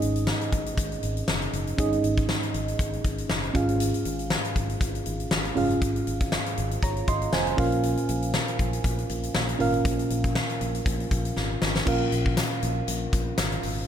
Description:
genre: 1980s-style pop.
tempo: 119 BPM.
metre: 4/4.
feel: swing 55% on 16ths.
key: unclear.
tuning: A4 = 440 Hz.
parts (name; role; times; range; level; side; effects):
mellow FM electric piano; accompaniment; 0.0-13.9 s; Ab2 to C6; -27 LUFS; right 2 dB; chorus.
fretless electric bass; bass; 0.0-13.8 s; F1 to Bb1; -31 LUFS; equal; lush chorus.
huge arena drum kit; drums; 0.0-13.8 s; crash cymbal, hi-hat, kick drum, snare drum; -27 LUFS; left 1 dB; none.
tambourine; percussion; 11.9-13.8 s; none; -42 LUFS; left 9 dB; none.
room: light reverb, small room ambience.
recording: none.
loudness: -23 LUFS.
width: side -9 dB against mid.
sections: 0.0-11.9 A section; 11.9-13.9 B section.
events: drum fill 11.4-11.9.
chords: 0.0 Absus4; 3.5 Db/Ab; 7.6 Bbm.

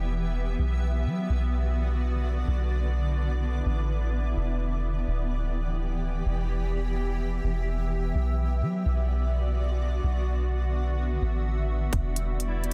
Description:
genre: hip hop, atmospheric cloud-rap.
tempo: 127 BPM.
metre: 4/4.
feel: half-time.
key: E minor.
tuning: A4 = 440 Hz.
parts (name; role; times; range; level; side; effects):
shimmering ambient pad; sustained chords; 0.0-12.7 s; D3 to E5; -35 LUFS; equal; chorus, built-in reverb.
soft 808-style bass; bass; 0.0-12.7 s; D1 to F#3; -28 LUFS; equal; none.
downlifter; sound effects; 0.0-0.6 s; none; barely audible; none; none.
trap drum kit; drums; 11.9-12.7 s; hi-hat, kick drum; -32 LUFS; equal; none.
backwards swelling texture; texture; 12.0-12.7 s; G3 to D5; -41 LUFS; equal; built-in reverb.
room: digital ambience.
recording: dense, heavily limited modern master.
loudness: -28 LUFS.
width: mono.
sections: 0.0-12.7 A section.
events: none.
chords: 0.0 Em; 0.6 Bm; 4.4 Em7; 8.1 Bm; 11.9 Em7.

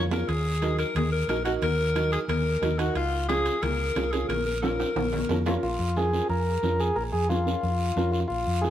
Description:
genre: latin, cumbia.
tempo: 180 BPM.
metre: 4/4.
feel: straight.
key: Bb minor.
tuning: A4 = 440 Hz.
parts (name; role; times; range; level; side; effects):
raspy tenor saxophone; second line; 0.0-5.4 s; F4 to Bb4; -28 LUFS; left 3 dB; none.
hollow-body short-scale fingered electric bass; bass; 0.0-8.7 s; Bb1 to F2; -28 LUFS; equal; none.
dark upright piano; accompaniment; 0.1-8.7 s; Db4 to Bb4; -31 LUFS; right 3 dB; none.
guiro; percussion; 0.1-8.7 s; none; -42 LUFS; right 6 dB; none.
timbales; percussion; 0.1-5.5 s; none; -37 LUFS; right 6 dB; none.
congas; percussion; 0.3-8.7 s; none; -36 LUFS; left 3 dB; none.
combo organ; melody; 5.5-8.7 s; F4 to Bb4; -27 LUFS; left 1 dB; none.
room: wet plate reverb, RT60 2.9 s.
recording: heard from further back in the room.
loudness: -24 LUFS.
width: side -11 dB against mid.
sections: 0.0-5.6 A section; 5.6-8.7 B section.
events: drum fill 0.0, 4.6-5.6; tenor saxophone solo 0.0-5.6.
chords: 0.3 Ebm; 3.0 Db; 4.3 Bbm.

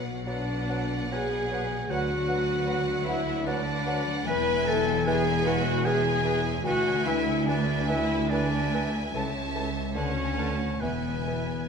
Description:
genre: classical, slow romantic movement for symphony orchestra.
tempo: 75 BPM.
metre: 3/4.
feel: uneven beats, rubato.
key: unclear.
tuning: A4 = 435 Hz.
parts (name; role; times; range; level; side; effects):
warm symphonic violin section; melody; 0.0-11.7 s; F#5 to A5; -37 LUFS; left 1 dB; none.
dark clarinet; second line; 0.0-11.4 s; A4 to B4; -40 LUFS; left 3 dB; none.
rich symphonic violin section; second line; 0.0-11.7 s; B4 to F#5; -38 LUFS; right 1 dB; none.
clear bassoon; accompaniment; 0.0-11.4 s; D3 to F#3; -37 LUFS; right 4 dB; none.
concert harp; arpeggios; 0.0-11.7 s; B2 to B5; -35 LUFS; left 10 dB; none.
rich studio cello section; bass; 0.0-11.7 s; C#2 to B2; -33 LUFS; right 1 dB; none.
rich studio double bass section; bass; 0.0-11.7 s; E1 to D2; -33 LUFS; right 5 dB; none.
clear oboe; second line; 0.3-11.7 s; B4 to B5; -35 LUFS; right 2 dB; none.
silver concert flute; second line; 0.3-11.4 s; F#5 to A5; -40 LUFS; equal; none.
clear symphonic viola section; accompaniment; 0.3-11.7 s; B3 to B4; -36 LUFS; right 1 dB; none.
mellow French horn section; sustained chords; 0.3-11.7 s; B3 to B4; -30 LUFS; left 2 dB; none.
room: moderate scoring stage reverb, RT60 2.0 s.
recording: none.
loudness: -24 LUFS.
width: side -6 dB against mid.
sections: 0.0-11.7 A section.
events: none.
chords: 0.0 Bm; 1.9 Bm/D; 4.3 E; 6.7 E7/D; 9.1 A/C#; 10.0 Bm7/D; 10.8 E.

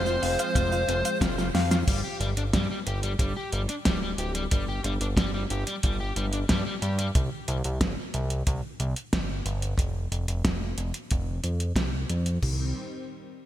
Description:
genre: synthwave.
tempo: 91 BPM.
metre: 4/4.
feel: straight.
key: unclear.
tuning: A4 = 439 Hz.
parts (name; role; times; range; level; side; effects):
bluesy overdriven lead guitar; melody; 0.0-1.2 s; C5; -29 LUFS; equal; distortion, digital delay.
warm analog pad; sustained chords; 0.0-1.9, 12.4-12.7 s; Eb3 to C4; -36 LUFS; right 1 dB; chorus, sidechain pumping.
fat analog bass; bass; 0.0-12.7 s; D1 to G2; -29 LUFS; equal; tube saturation.
wide unison pluck; arpeggios; 0.1-1.8 s; C4 to F5; -36 LUFS; left 3 dB; ping-pong delay.
crunchy overdriven guitar; riff; 0.1-7.1 s; G3 to F5; -33 LUFS; left 3 dB; wide subtle chorus, ping-pong delay.
pop drum kit; drums; 0.1-12.6 s; cabasa, crash cymbal, hi-hat, snare drum; -30 LUFS; equal; overdrive, gated reverb.
kick drum; drums; 0.6-12.6 s; none; -29 LUFS; equal; none.
room: light reverb, digital ambience.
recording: bright 1980s-style digital production.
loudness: -25 LUFS.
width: side -12 dB against mid.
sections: 0.0-1.9 A section; 1.9-12.4 B section; 12.4-13.5 C section.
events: drum fill 1.4-1.9.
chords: 0.0 Fm; 1.9 G5; 7.2 C5; 9.8 F5; 12.4 Cm.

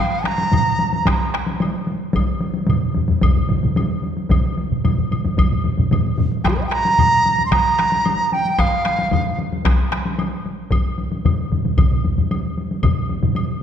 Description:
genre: japanese traditional, taiko drum ensemble.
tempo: 112 BPM.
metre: 4/4.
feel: straight.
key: unclear.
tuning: A4 = 440 Hz.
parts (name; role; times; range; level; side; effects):
bright large dizi; melody; 0.0-1.3, 6.4-9.4 s; F4 to C6; -18 LUFS; right 2 dB; none.
solo taiko drums; percussion; 0.2-13.5 s; none; -23 LUFS; equal; none.
taiko ensemble; percussion; 0.3-13.4 s; none; -23 LUFS; left 4 dB; none.
taiko ensemble; percussion; 0.3-13.4 s; none; -24 LUFS; right 4 dB; none.
woodblock; percussion; 0.5-13.5 s; none; -32 LUFS; left 2 dB; none.
taiko ensemble; percussion; 1.1-13.0 s; none; -22 LUFS; equal; none.
room: wet concert hall reverb, RT60 1.9 s.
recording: dark, warm production.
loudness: -16 LUFS.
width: side -8 dB against mid.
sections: 0.0-13.6 A section.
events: none.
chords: none.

